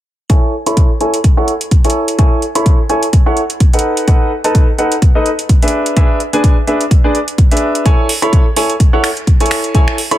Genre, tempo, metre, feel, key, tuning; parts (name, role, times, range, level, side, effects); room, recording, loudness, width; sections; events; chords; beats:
piano house; 127 BPM; 4/4; swing 56% on 16ths; A major; A4 = 441 Hz
clear concert grand piano; riff; 0.3-10.2 s; D4 to B5; -15 LUFS; equal; sidechain pumping, low-pass filter, dub echo
electronic kick drum; drums; 0.3-9.9 s; -10 LUFS; equal
house drum kit; drums; 0.3-10.2 s; finger snaps, hi-hat; -20 LUFS; right 2 dB
digital ambience; -10 LUFS; side -13 dB against mid
0.3-10.2 A section
filter sweep on grand piano 0.3-10.2
0.3 Amaj7; 3.8 B7; 5.7 E7; 7.9 Amaj7
| 0.30 0.77 1.24 1.71 | 2.19 2.66 3.13 3.60 | 4.08 4.55 5.02 5.49 | 5.97 6.44 6.91 7.38 | 7.86 8.33 8.80 9.27 | 9.75